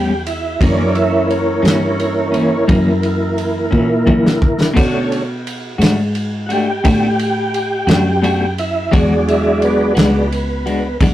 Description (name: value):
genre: slow blues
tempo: 58 BPM (dotted quarters)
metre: 12/8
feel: straight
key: unclear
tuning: A4 = 440 Hz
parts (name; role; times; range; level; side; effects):
- clean electric guitar; accompaniment; 0.0-11.1 s; F#2 to F#4; -18 LUFS; left 2 dB; tremolo
- tonewheel organ; sustained chords; 0.0-11.0 s; D3 to G4; -17 LUFS; right 1 dB; slow rotary speaker, chorus vibrato
- fingered electric bass; bass; 0.0-11.1 s; B1 to B2; -19 LUFS; equal; none
- warm soul drum kit; drums; 0.3-11.1 s; crash cymbal, kick drum, ride cymbal, snare drum; -19 LUFS; equal; none
room: moderate small room reverb, RT60 0.5 s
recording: rough rehearsal-room recording, tube saturation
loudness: -13 LUFS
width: side -13 dB against mid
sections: 0.0-11.1 A section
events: tonewheel organ solo 0.0-11.1; drum fill 3.7-4.8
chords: 0.0 A9; 0.6 F#7; 4.8 Bm7; 8.9 E9